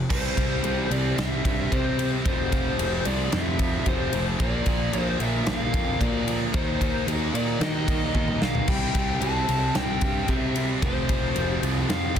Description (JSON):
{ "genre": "hard rock", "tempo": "112 BPM", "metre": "4/4", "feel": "straight", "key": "unclear", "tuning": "A4 = 440 Hz", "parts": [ { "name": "cranked stack guitar", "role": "riff", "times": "0.0-12.2 s", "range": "F2 to Eb4", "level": "-32 LUFS", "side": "right 13 dB", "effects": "overdrive" }, { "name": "overdriven electric guitar", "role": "riff", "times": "0.0-12.2 s", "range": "F2 to Eb4", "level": "-32 LUFS", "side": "left 9 dB", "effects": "none" }, { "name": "fuzz picked electric bass", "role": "bass", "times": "0.0-12.2 s", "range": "F1 to Eb3", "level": "-28 LUFS", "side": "equal", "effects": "overdrive" }, { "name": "biting lead guitar", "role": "melody", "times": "0.1-12.2 s", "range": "C5 to A5", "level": "-30 LUFS", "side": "left 2 dB", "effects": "overdrive" }, { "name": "scooped high-gain guitar", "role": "riff", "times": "0.1-12.2 s", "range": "F2 to F4", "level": "-33 LUFS", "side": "equal", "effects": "distortion" }, { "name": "big rock drum kit", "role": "drums", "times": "0.1-12.2 s", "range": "crash cymbal, kick drum, ride cymbal, snare drum, toms", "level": "-27 LUFS", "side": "equal", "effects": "none" } ], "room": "small room ambience", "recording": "dense, heavily limited modern master", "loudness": "-22 LUFS", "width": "side -8 dB against mid", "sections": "0.1-12.2 A section", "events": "drum fill 8.1-8.7", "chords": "0.1 C; 2.3 F; 4.4 Bb; 6.5 Eb; 8.7 C; 10.8 F" }